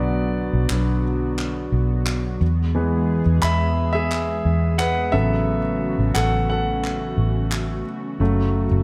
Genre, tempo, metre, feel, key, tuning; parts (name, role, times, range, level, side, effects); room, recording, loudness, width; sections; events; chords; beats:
piano-driven pop; 88 BPM; 4/4; straight; A4 = 441 Hz
warm concert grand piano; accompaniment; 0.0-8.8 s; C#3 to B5; -25 LUFS; equal
airy breathy pad; sustained chords; 0.0-8.8 s; C#3 to G#4; -32 LUFS; equal; chorus
vintage muted fingered electric bass; bass; 0.0-8.8 s; F#1 to E2; -24 LUFS; equal
group handclap; percussion; 0.7-7.7 s; -33 LUFS; equal
light reverb, small room ambience; -21 LUFS; mono
0.0-8.8 A section
grand piano solo 0.0-8.8
0.0 Bm; 2.4 E; 5.1 A6; 8.2 F#m
| 0.03 0.71 1.39 2.07 | 2.75 3.43 4.11 4.79 | 5.48 6.16 6.84 7.52 | 8.20